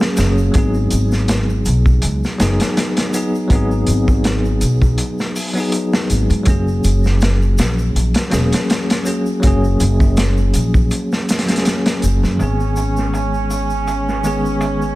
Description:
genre	trip hop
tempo	81 BPM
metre	4/4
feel	swing 54% on 16ths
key	G# minor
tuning	A4 = 439 Hz
part	bell-like tine electric piano	accompaniment	0.0-15.0 s	D#3 to G#4	-19 LUFS	equal	tremolo, tape echo
part	crunchy breakbeat drum kit	drums	0.0-14.8 s	hi-hat, kick drum, snare drum	-18 LUFS	equal	low-pass filter on kick, low-pass filter on hats, low-pass filter on snare, low-pass filter on room
part	tube shaker	percussion	0.0-15.0 s	none	-35 LUFS	equal	none
part	upright bass	bass	0.2-15.0 s	E1 to G#2	-17 LUFS	equal	none
part	dark chamber string section	sustained chords	12.4-15.0 s	C#4	-21 LUFS	right 3 dB	vintage 12-bit sampler grit
room	little or no reverb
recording	none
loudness	-14 LUFS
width	side -18 dB against mid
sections	0.0-12.4 A section; 12.4-15.0 B section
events	none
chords	0.0 F#add9; 0.5 G#m7; 6.5 F#add9; 12.4 G#m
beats	| 0.55 1.29 2.03 2.77 | 3.51 4.25 4.99 5.73 | 6.47 7.21 7.96 8.70 | 9.44 10.18 10.92 11.66 | 12.40 13.14 13.88 14.62

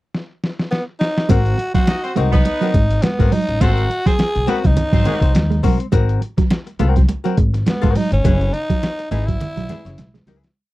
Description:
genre	funk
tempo	104 BPM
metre	4/4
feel	swing 56% on 16ths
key	Ab mixolydian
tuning	A4 = 439 Hz
part	lo-fi sampler-style drum kit	drums	0.1-10.6 s	hi-hat, kick drum, snare drum	-18 LUFS	equal	none
part	growling tenor saxophone	melody	0.7-10.1 s	Cb4 to Ab4	-22 LUFS	equal	none
part	archtop guitar, miked and amplified	accompaniment	1.3-10.5 s	C4 to Db5	-25 LUFS	left 8 dB	wah
part	mellow electric guitar	riff	1.3-10.4 s	Gb3 to Ab3	-23 LUFS	right 5 dB	none
part	upright bass	bass	1.3-10.4 s	Gb1 to Ab2	-18 LUFS	equal	none
part	congas	percussion	1.3-10.4 s	none	-25 LUFS	right 2 dB	none
part	clear horn section	second line	1.7-5.2 s	Ab3 to Eb5	-27 LUFS	equal	none
room	little or no reverb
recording	dry, close 1970s-style studio recording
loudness	-15 LUFS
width	side -18 dB against mid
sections	0.0-1.3 pickup bar; 1.3-10.6 A section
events	drum fill 0.1-1.3, 9.4-10.6; fade-out 8.2-10.6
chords	0.0 N.C.; 1.3 Ab9; 8.2 Gb9sus4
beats	0.14 0.72 | 1.29 1.87 2.45 3.03 | 3.61 4.19 4.77 5.35 | 5.93 6.51 7.09 7.67 | 8.25 8.83 9.41 9.98

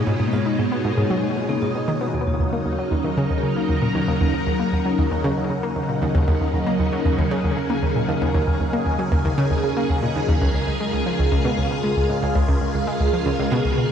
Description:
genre	ambient, sequencer-driven space music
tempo	116 BPM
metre	4/4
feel	straight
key	Eb minor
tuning	A4 = 440 Hz
part	phased string machine	sustained chords	0.0-13.9 s	Cb3 to Bb4	-23 LUFS	equal	ensemble chorus, phaser
part	vibraphone with medium hard mallets	arpeggios	0.0-2.1 s	Bb3 to Eb5	-30 LUFS	left 2 dB	auto-pan, ping-pong delay
part	wind-like tuned noise texture	texture	0.0-13.9 s	Bb4 to Db5	-31 LUFS	equal	built-in reverb
part	analog pluck	riff	0.1-13.8 s	Db2 to Eb4	-21 LUFS	equal	chorus, ping-pong delay
room	wet echo chamber reverb, RT60 2.0 s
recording	echo-heavy mix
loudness	-19 LUFS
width	side -8 dB against mid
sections	0.0-2.1 A section; 2.1-13.9 B section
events	filter sweep on synth arpeggio sound 0.0-2.1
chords	0.0 Abm; 2.1 Ebm7; 10.4 Db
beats	| 0.07 0.59 1.10 1.62 | 2.14 2.66 3.17 3.69 | 4.21 4.72 5.24 5.76 | 6.28 6.79 7.31 7.83 | 8.35 8.86 9.38 9.90 | 10.41 10.93 11.45 11.97 | 12.48 13.00 13.52

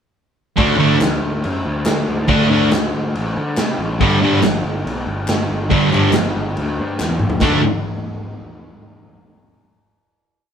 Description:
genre	garage rock duo or trio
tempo	140 BPM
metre	4/4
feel	straight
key	unclear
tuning	A4 = 440 Hz
part	thick fuzz guitar	riff	0.6-7.6 s	G2 to D4	-15 LUFS	right 1 dB	distortion
part	fuzz picked electric bass	bass	0.6-7.6 s	G1 to D3	-22 LUFS	left 1 dB	overdrive
part	raw garage drum kit	drums	0.6-7.5 s	crash cymbal, kick drum, snare drum, splash cymbal, toms	-20 LUFS	equal	none
part	group handclap	percussion	1.0-7.6 s	none	-32 LUFS	left 2 dB	none
room	moderate large studio reverb, RT60 0.9 s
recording	band playing live in one room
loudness	-15 LUFS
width	side -8 dB against mid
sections	0.6-7.4 verse; 7.4-9.2 final chord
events	drum fill 7.0-7.4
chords	0.6 D5; 4.0 G5; 7.4 D5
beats	| 0.57 1.00 1.43 1.86 | 2.29 2.72 3.15 3.58 | 4.00 4.43 4.86 5.29 | 5.71 6.14 6.57 7.00 | 7.43

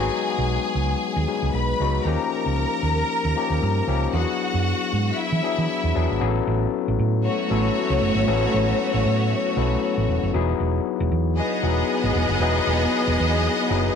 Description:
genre	disco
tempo	116 BPM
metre	4/4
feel	swing 56% on 16ths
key	unclear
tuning	A4 = 438 Hz
part	bright studio string section	second line	0.0-14.0 s	A3 to B5	-24 LUFS	equal	none
part	overdriven tine electric piano	accompaniment	0.0-14.0 s	F3 to A4	-25 LUFS	left 10 dB	none
part	hollow-body short-scale fingered electric bass	bass	0.0-13.9 s	E1 to E3	-23 LUFS	right 2 dB	none
room	light reverb, small room ambience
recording	none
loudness	-20 LUFS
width	side -7 dB against mid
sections	0.0-6.2 A section; 6.2-14.0 B section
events	none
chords	0.0 G#m7; 2.1 D#7; 4.1 E7; 6.2 A6; 10.3 Emaj7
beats	0.50 1.02 1.54 | 2.06 2.58 3.10 3.62 | 4.13 4.65 5.17 5.69 | 6.21 6.72 7.24 7.76 | 8.27 8.79 9.31 9.82 | 10.34 10.86 11.37 11.89 | 12.41 12.92 13.44

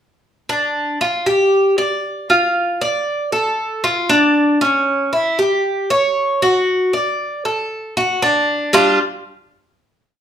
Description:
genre	latin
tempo	116 BPM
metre	4/4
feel	straight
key	unclear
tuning	A4 = 440 Hz
part	Cuban tres	solo	0.5-9.0 s	G3 to D5	-14 LUFS	equal	none
room	moderate large studio reverb, RT60 0.8 s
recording	band playing live in one room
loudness	-14 LUFS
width	side -9 dB against mid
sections	0.5-8.7 verse; 8.7-10.2 final chord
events	none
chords	0.5 G5; 2.6 Dm; 4.6 C#dim; 6.7 D; 8.7 G5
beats	| 0.49 1.01 1.52 2.04 | 2.55 3.07 3.58 4.10 | 4.61 5.13 5.65 6.16 | 6.68 7.19 7.71 8.23 | 8.74

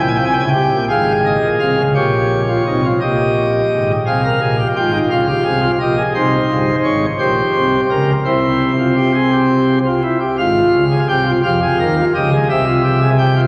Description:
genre	classical, baroque-style 3-part fugue for pipe organ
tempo	57 BPM (dotted quarters)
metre	6/8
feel	straight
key	Bb minor, F minor from 6.2 s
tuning	A4 = 440 Hz
part	pipe organ, sparkling flutes	solo	0.0-13.5 s	G1 to Ab5	-15 LUFS	equal	none
room	wet cathedral reverb, RT60 4.9 s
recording	vinyl crackle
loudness	-15 LUFS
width	mono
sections	0.0-2.0 A section; 2.0-10.4 B section; 10.4-13.5 C section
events	none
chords	0.0 C7; 0.9 Fm/Ab; 2.0 Bbm; 3.0 Eb/Bb; 4.1 Abmaj7; 5.1 Db; 6.2 Ab; 7.2 Gdim/Bb; 8.3 C; 10.4 Fm/Ab; 11.4 Gm7b5; 12.5 C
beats	0.90 | 1.96 3.02 | 4.07 5.11 | 6.16 7.21 | 8.26 9.33 | 10.39 11.45 | 12.49

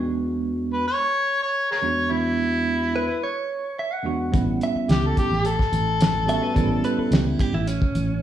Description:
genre	straight-eighth soul blues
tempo	108 BPM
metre	4/4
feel	straight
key	unclear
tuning	A4 = 440 Hz
part	tine electric piano	accompaniment	0.0-7.5 s	E2 to F#4	-24 LUFS	right 3 dB	medium stereo tremolo
part	overdriven harmonica	melody	0.7-7.1 s	E4 to C#5	-23 LUFS	left 2 dB	none
part	direct-recorded clean electric guitar	second line	3.0-8.2 s	C#4 to F#5	-28 LUFS	right 2 dB	slapback echo
part	fingered electric bass	bass	4.3-8.2 s	A1 to C#2	-24 LUFS	equal	none
part	cloth-damped thuddy drum kit	drums	4.3-8.1 s	hi-hat, kick drum, snare drum	-22 LUFS	equal	none
room	light reverb, studio reverb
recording	none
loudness	-20 LUFS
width	side -11 dB against mid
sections	0.0-8.2 A section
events	none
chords	0.0 E9; 4.3 A9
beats	0.44 0.99 1.55 | 2.11 2.66 3.22 3.78 | 4.33 4.89 5.45 6.00 | 6.56 7.12 7.67

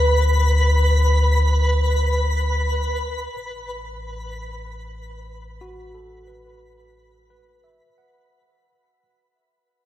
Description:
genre	ambient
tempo	53 BPM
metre	4/4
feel	straight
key	unclear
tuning	A4 = 439 Hz
part	tine electric piano	arpeggios	0.0-9.0 s	F#4 to F#5	-30 LUFS	right 1 dB	medium stereo tremolo, tape echo, shimmer reverb
part	warm sub bass	bass	0.0-7.8 s	A1 to D2	-20 LUFS	equal	none
part	twinkling granular texture	texture	0.0-7.9 s	B4 to B5	-25 LUFS	equal	built-in reverb, shimmer reverb
room	moderate concert hall reverb, RT60 2.2 s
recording	none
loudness	-17 LUFS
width	side -13 dB against mid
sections	0.0-7.9 A section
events	fade-out 0.0-7.9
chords	0.0 Bm/D; 3.3 Asus2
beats	1.08 2.21 | 3.34 4.47 5.61 6.74

